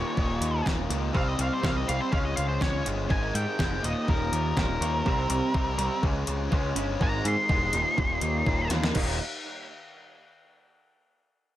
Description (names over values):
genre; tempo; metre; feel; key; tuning
indie rock; 123 BPM; 4/4; straight; Eb mixolydian; A4 = 439 Hz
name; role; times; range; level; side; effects
octave-fuzz lead guitar; melody; 0.0-8.7 s; Bb4 to C6; -31 LUFS; equal; distortion, digital delay
electric guitar through a small old amp; riff; 0.0-9.1 s; Eb2 to Eb4; -34 LUFS; right 5 dB; ensemble chorus, digital delay
raw garage guitar; riff; 0.0-9.2 s; Eb2 to Eb4; -32 LUFS; left 4 dB; overdrive
growling picked electric bass; bass; 0.2-9.2 s; Eb1 to Ab2; -30 LUFS; equal; overdrive
clean 12-bit digital drum machine; drums; 0.2-9.1 s; crash cymbal, hi-hat, kick drum, snare drum; -29 LUFS; equal; overdrive
hollow soft pad; sustained chords; 1.1-9.2 s; C3 to Eb5; -40 LUFS; equal; none
room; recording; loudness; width
light reverb; none; -24 LUFS; side -13 dB against mid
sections
0.0-9.0 A section; 9.0-10.9 B section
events
lead electric guitar solo 0.0-9.0; drum fill 8.7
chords
0.0 Eb5; 1.2 Cm; 2.1 Dbmaj7; 3.1 Abmaj7; 3.8 Eb7; 5.1 Cm; 6.0 Dbmaj7; 7.0 Abmaj7; 7.7 Eb7